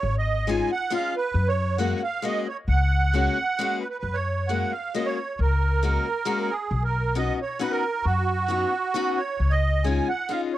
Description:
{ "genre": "musette waltz", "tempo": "134 BPM", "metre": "3/4", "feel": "straight", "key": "F# major", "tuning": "A4 = 439 Hz", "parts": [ { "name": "musette accordion", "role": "melody", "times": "0.0-10.6 s", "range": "F#4 to G#5", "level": "-26 LUFS", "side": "right 4 dB", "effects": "cassette tape" }, { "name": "upright bass", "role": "bass", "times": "0.0-10.0 s", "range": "G#1 to F#2", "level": "-23 LUFS", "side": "left 1 dB", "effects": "none" }, { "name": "picked steel-string acoustic guitar", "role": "accompaniment", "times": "0.5-10.5 s", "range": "G#3 to F#4", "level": "-27 LUFS", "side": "left 6 dB", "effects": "cassette tape" } ], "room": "little or no reverb", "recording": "home recording on cassette", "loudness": "-22 LUFS", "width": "side -14 dB against mid", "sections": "0.0-4.0 A section; 4.0-10.6 A section", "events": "none", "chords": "0.0 C#add9; 1.3 F#add9; 6.7 Badd9; 9.4 C#add9" }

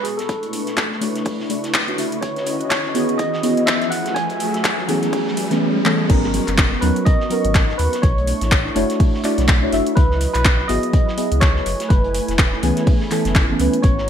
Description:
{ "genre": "deep house", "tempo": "124 BPM", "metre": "4/4", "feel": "swing 58% on 16ths", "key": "unclear", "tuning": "A4 = 439 Hz", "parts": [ { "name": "overdriven tine electric piano", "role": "melody", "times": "0.0-14.1 s", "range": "G#4 to G#5", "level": "-26 LUFS", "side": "right 1 dB", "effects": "phaser, low-pass filter, digital delay" }, { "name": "warm analog pad", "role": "sustained chords", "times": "0.0-14.1 s", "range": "F#3 to C#6", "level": "-27 LUFS", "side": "equal", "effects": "chorus, sidechain pumping" }, { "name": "deep mellow chord stab", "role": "stabs", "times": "0.0-13.8 s", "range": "E3 to E5", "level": "-21 LUFS", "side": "equal", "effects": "chorus, phaser, sidechain pumping, ping-pong delay" }, { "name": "cloth-damped thuddy drum kit", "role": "drums", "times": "0.0-14.1 s", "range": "hi-hat, snare drum", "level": "-34 LUFS", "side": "right 1 dB", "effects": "sidechain pumping on hats, high-pass filter on hats, small room ambience, high-pass filter on snare, high-pass filter on room, gated reverb" }, { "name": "deep house drum kit", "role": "drums", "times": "0.0-13.9 s", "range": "crash cymbal, handclaps, hi-hat", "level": "-23 LUFS", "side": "left 1 dB", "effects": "small room ambience, gated reverb" }, { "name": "riser", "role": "sound effects", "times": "1.6-6.1 s", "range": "none", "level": "-28 LUFS", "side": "equal", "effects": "none" }, { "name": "electronic kick drum", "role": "drums", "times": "0.3-13.9 s", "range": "none", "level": "-16 LUFS", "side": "equal", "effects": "high-pass filter on kick, small room ambience" }, { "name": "warm sub bass", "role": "bass", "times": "6.1-14.1 s", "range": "E1 to D#2", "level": "-22 LUFS", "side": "equal", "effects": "sidechain pumping" } ], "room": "moderate plate reverb, RT60 1.6 s, digital ambience", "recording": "bright 1980s-style digital production", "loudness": "-16 LUFS", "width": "side -9 dB against mid", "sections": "0.0-6.1 A section; 6.1-14.1 B section", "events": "build-up 0.0-6.1; filter sweep on synth stab 0.0-6.1; filter sweep on tine electric piano 0.0-6.1; riser 1.6-6.1; drum fill 5.9; drop 6.1-14.1", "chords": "0.3 Bm11; 2.2 C#m11; 3.9 F#m11; 6.1 G#m11; 8.0 Bm11; 10.0 C#m11; 11.7 F#m11" }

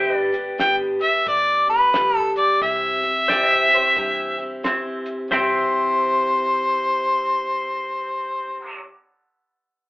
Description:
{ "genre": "honky-tonk and classic country", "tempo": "89 BPM", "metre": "4/4", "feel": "swing 62% on 8ths", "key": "C major", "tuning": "A4 = 441 Hz", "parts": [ { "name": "picked steel-string acoustic guitar", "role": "accompaniment", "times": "0.0-8.9 s", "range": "G2 to G4", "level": "-27 LUFS", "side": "equal", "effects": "none" }, { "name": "pedal steel guitar", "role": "sustained chords", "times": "0.0-8.8 s", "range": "B4 to G5", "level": "-26 LUFS", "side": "equal", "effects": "none" }, { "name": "vintage muted fingered electric bass", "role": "bass", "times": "0.0-8.8 s", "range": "G1 to G2", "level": "-46 LUFS", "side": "equal", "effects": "none" }, { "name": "cloth-damped thuddy drum kit", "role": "drums", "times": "0.3-5.5 s", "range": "hi-hat, kick drum, snare drum", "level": "-31 LUFS", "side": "equal", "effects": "none" }, { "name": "clear harmonica", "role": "melody", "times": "0.6-8.8 s", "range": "B4 to G5", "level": "-18 LUFS", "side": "equal", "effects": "none" }, { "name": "lap resonator guitar", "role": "second line", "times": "3.7-8.8 s", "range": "C4 to C5", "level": "-30 LUFS", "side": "right 1 dB", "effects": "none" } ], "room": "wet small room reverb, RT60 0.5 s", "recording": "band playing live in one room, telephone sound", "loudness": "-17 LUFS", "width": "side -21 dB against mid", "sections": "0.0-5.3 A section; 5.3-8.0 B section", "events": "none", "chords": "0.0 G; 2.6 C" }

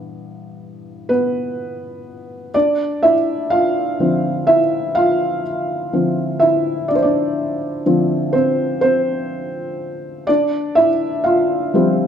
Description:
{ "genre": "pop", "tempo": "62 BPM", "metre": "4/4", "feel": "straight", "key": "unclear", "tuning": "A4 = 440 Hz", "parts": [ { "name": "felt-muted upright piano", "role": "solo", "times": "0.0-12.1 s", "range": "G2 to F5", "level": "-16 LUFS", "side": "equal", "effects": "none" } ], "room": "moderate large studio reverb, RT60 1.2 s", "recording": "band playing live in one room", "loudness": "-15 LUFS", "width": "side -8 dB against mid", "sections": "0.0-2.5 A section; 2.5-12.1 B section", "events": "felt piano solo 0.0-2.5, 2.5-12.1", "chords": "0.0 G6; 2.5 Dm7; 10.3 Fsus2" }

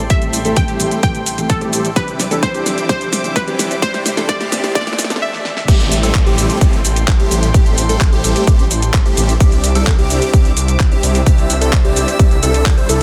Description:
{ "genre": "EDM, festival progressive house", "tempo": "129 BPM", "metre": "4/4", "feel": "straight", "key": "A minor", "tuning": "A4 = 441 Hz", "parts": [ { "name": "glassy wavetable pluck", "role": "melody", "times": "0.0-5.4 s", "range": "A4 to G5", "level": "-25 LUFS", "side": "equal", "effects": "chorus, dub echo" }, { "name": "dark studio string section", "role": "sustained chords", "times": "0.0-13.0 s", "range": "C4 to E6", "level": "-30 LUFS", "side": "equal", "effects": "sidechain pumping, low-pass filter" }, { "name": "plucky unison lead", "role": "arpeggios", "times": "0.0-13.0 s", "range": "G4 to C5", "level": "-26 LUFS", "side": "equal", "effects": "cassette tape, sidechain pumping, dub echo" }, { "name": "big supersaw lead", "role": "riff", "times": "0.0-13.0 s", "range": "G3 to C5", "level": "-24 LUFS", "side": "equal", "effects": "phaser, sidechain pumping, low-pass filter, dub echo" }, { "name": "detuned saw bass", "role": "bass", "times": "0.0-13.0 s", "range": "A1 to C2", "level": "-22 LUFS", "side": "equal", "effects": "chorus, sidechain pumping" }, { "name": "riser and downlifter", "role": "sound effects", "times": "2.6-9.4 s", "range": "none", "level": "-31 LUFS", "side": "equal", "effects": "none" }, { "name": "dark concert grand piano", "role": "accompaniment", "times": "0.1-5.2 s", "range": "A2 to C5", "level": "-28 LUFS", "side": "equal", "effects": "vintage 12-bit sampler grit, sidechain pumping, dub echo" }, { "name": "electronic kick drum", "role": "drums", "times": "0.1-12.8 s", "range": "none", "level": "-15 LUFS", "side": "equal", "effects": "studio reverb" }, { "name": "pop drum kit", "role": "drums", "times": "0.1-13.0 s", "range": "crash cymbal, handclaps, hi-hat, shaker, snare drum", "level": "-23 LUFS", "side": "equal", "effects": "studio reverb, soft clipping on snare" } ], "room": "light reverb", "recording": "dense, heavily limited modern master, high-pass filter", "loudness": "-14 LUFS", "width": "mono", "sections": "0.0-5.7 A section; 5.7-13.0 B section", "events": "build-up 0.0-5.7; drum fill 0.0-5.2, 5.3-5.7; filter sweep on supersaw synth 0.0-5.7; filter sweep on digital synth lead 0.0-5.7; filter sweep on string section 0.0-5.7; filter sweep 0.0-5.7; break 5.2-5.7; drop 5.7-13.0", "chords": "0.0 Am7; 2.0 Cadd9; 5.7 Am7; 9.4 Cadd9" }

